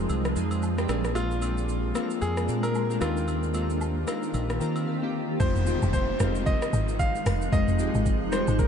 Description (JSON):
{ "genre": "amapiano", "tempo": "113 BPM", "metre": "4/4", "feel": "swing 58% on 16ths", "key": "F dorian", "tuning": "A4 = 440 Hz", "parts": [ { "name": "bright concert grand piano", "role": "melody", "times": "0.0-8.7 s", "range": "F4 to F5", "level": "-32 LUFS", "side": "equal", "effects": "low-pass filter, ping-pong delay" }, { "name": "glassy digital keys", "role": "accompaniment", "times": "0.0-8.7 s", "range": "G3 to Bb5", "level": "-31 LUFS", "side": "left 2 dB", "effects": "chorus, low-pass filter" }, { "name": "granular cloud pad", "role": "sustained chords", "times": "0.0-8.7 s", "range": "Eb3 to D5", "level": "-32 LUFS", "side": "equal", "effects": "built-in reverb, analog chorus, low-pass filter" }, { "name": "deep dub fingered electric bass", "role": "bass", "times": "0.0-4.8 s", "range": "Bb1 to Eb3", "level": "-29 LUFS", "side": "equal", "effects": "none" }, { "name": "smooth R&B drum kit", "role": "drums", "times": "0.1-8.7 s", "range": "hi-hat, kick drum, rim click, shaker, toms", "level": "-30 LUFS", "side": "equal", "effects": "none" }, { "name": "agogo bells and woodblock", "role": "percussion", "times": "0.1-4.9 s", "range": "none", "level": "-41 LUFS", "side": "equal", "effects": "none" }, { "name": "woody log drum bass", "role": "bass", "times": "5.4-8.7 s", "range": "F1 to Ab1", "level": "-27 LUFS", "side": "equal", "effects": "none" }, { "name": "downlifter", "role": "sound effects", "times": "5.4-8.7 s", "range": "none", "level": "-37 LUFS", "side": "left 2 dB", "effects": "none" } ], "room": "moderate huge ambient reverb, RT60 5.2 s", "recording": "dreamy mix soaked in reverb, nothing above 10.7 kHz", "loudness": "-24 LUFS", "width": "side -7 dB against mid", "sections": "0.0-5.4 A section; 5.4-8.7 B section", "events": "synth keys fill 4.3-5.4; drop 5.4-8.7", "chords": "0.0 Fm7; 0.9 Bb7; 3.0 Eb69; 5.4 Fm7", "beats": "0.10 0.63 | 1.16 1.69 2.22 2.75 | 3.28 3.81 4.34 4.87 | 5.41 5.94 6.47 7.00 | 7.53 8.06 8.59" }